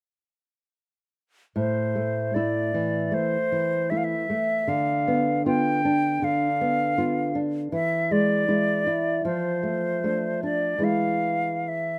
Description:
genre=romantic duo for flute and classical guitar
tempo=77 BPM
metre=4/4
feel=rubato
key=A minor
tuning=A4 = 440 Hz
part: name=silver concert flute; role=melody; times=1.6-12.0 s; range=C5 to G5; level=-28 LUFS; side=equal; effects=none
part: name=nylon-string guitar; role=accompaniment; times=1.6-12.0 s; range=A2 to F4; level=-28 LUFS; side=equal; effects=none
room=small room ambience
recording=rough home demo mix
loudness=-25 LUFS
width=mono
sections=1.6-12.0 A section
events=none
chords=1.6 Am; 4.7 Bdim/D; 7.7 E7; 9.3 F6; 10.8 E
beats=| 1.56 2.35 3.13 3.91 | 4.68 5.47 6.24 7.01 | 7.75 8.50 9.26 10.04 | 10.84 11.68

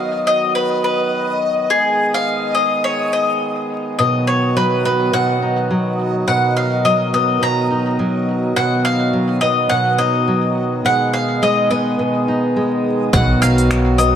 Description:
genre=folktronica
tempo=105 BPM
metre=4/4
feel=swing 56% on 16ths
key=B lydian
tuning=A4 = 440 Hz
part: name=bowl-back mandolin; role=melody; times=0.0-14.2 s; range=G#4 to A#5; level=-18 LUFS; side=left 1 dB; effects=tape echo
part: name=pedal harmonium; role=sustained chords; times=0.0-14.2 s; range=D#3 to A#4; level=-22 LUFS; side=right 1 dB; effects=none
part: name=backwards swelling texture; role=texture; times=0.0-13.2 s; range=D#5 to D#6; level=-26 LUFS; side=left 3 dB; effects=built-in reverb
part: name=fingerpicked steel-string acoustic guitar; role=arpeggios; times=4.0-14.2 s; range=B2 to D#4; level=-18 LUFS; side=equal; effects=none
part: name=upright bass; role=bass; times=13.1-14.2 s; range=B1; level=-16 LUFS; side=equal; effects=none
part: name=electronic kick drum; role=drums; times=13.1-13.3 s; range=none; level=-18 LUFS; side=equal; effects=overdrive
part: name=organic electronic drum kit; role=drums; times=13.1-14.1 s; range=finger snaps, hi-hat, shaker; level=-26 LUFS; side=equal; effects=overdrive, low-pass filter on hats, low-pass filter on perc, low-pass filter on snare
room=moderate plate reverb, RT60 2.4 s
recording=vinyl crackle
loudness=-14 LUFS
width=side -9 dB against mid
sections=0.0-13.1 A section; 13.1-14.2 B section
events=none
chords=0.0 B; 1.7 G#m; 4.0 B; 6.3 D#m/B; 8.6 B; 10.8 G#m/B; 13.1 B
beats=0.56 1.13 | 1.71 2.28 2.85 3.42 | 3.99 4.56 5.13 5.71 | 6.28 6.85 7.42 7.99 | 8.56 9.13 9.71 10.28 | 10.85 11.42 11.99 12.56 | 13.13 13.71

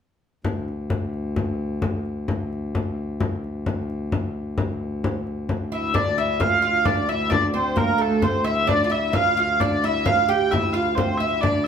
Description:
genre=medieval dance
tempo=131 BPM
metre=3/4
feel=straight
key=D minor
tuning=A4 = 439 Hz
part: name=hand-pumped harmonium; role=drone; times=0.4-11.7 s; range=D2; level=-28 LUFS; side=left 2 dB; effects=none
part: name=frame drum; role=percussion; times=0.4-11.6 s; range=none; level=-26 LUFS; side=left 2 dB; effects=none
part: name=warm hurdy-gurdy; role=melody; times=5.7-11.7 s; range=A4 to G5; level=-22 LUFS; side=left 2 dB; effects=none
part: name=oud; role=second line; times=5.7-11.7 s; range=A3 to G4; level=-23 LUFS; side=right 5 dB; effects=none
room=wet large studio reverb, RT60 0.8 s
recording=band playing live in one room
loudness=-20 LUFS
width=side -7 dB against mid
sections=0.4-5.9 A section; 5.9-11.7 B section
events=none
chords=none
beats=| 0.45 0.90 1.36 | 1.82 2.28 2.73 | 3.19 3.65 4.11 | 4.57 5.03 5.48 | 5.94 6.40 6.86 | 7.31 7.77 8.23 | 8.69 9.14 9.60 | 10.06 10.52 10.97 | 11.43

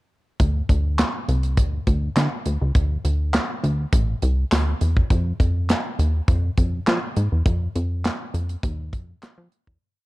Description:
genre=early-eighties boogie funk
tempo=102 BPM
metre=4/4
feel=straight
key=unclear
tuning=A4 = 441 Hz
part: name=plucky analog bass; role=bass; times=0.4-9.8 s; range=A1 to F3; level=-21 LUFS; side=equal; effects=none
part: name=modern studio drum kit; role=drums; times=0.4-9.8 s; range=handclaps, hi-hat, kick drum, snare drum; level=-22 LUFS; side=equal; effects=none
room=little or no reverb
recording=dark, warm production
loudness=-19 LUFS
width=side -19 dB against mid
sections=0.4-9.8 breakdown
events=fade-out 7.5-9.8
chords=none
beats=| 0.40 0.99 1.57 2.16 | 2.75 3.34 3.93 4.52 | 5.10 5.69 6.28 6.87 | 7.46 8.04 8.63 9.22

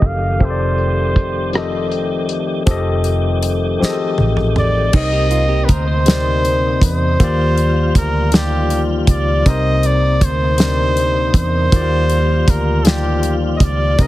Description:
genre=slow six-eight R&B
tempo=53 BPM (dotted quarters)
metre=6/8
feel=straight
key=C minor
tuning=A4 = 440 Hz
part: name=warm flugelhorn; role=melody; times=0.0-14.1 s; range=G4 to F5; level=-20 LUFS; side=right 1 dB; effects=none
part: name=barky tine electric piano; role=accompaniment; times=0.0-14.1 s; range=C3 to F5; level=-20 LUFS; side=left 4 dB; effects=none
part: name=tonewheel organ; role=sustained chords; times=0.0-14.1 s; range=C3 to G4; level=-26 LUFS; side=right 1 dB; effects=chorus vibrato, fast rotary speaker
part: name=vintage muted fingered electric bass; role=bass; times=0.0-14.1 s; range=F1 to E2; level=-18 LUFS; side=right 1 dB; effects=none
part: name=damped 70s drum kit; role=drums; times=0.0-14.1 s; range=crash cymbal, hi-hat, kick drum, rim click, snare drum, toms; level=-15 LUFS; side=equal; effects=none
part: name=clean electric guitar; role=second line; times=4.9-7.0 s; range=Eb4 to C5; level=-27 LUFS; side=right 4 dB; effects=ping-pong delay
room=small room reverb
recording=heavily compressed radio sound, multiband compression, low-pass filter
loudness=-13 LUFS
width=side -16 dB against mid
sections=0.0-2.7 A section; 2.7-4.9 B section; 4.9-14.1 C section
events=filter sweep 0.0-2.7; drum fill 3.8-4.9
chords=0.0 F9; 4.9 Cm7; 7.2 Ebmaj9; 9.5 Cm7; 11.7 Ebmaj9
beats=| 0.41 1.54 | 2.67 3.80 | 4.93 6.07 | 7.20 8.33 | 9.46 10.59 | 11.73 12.86 | 13.99

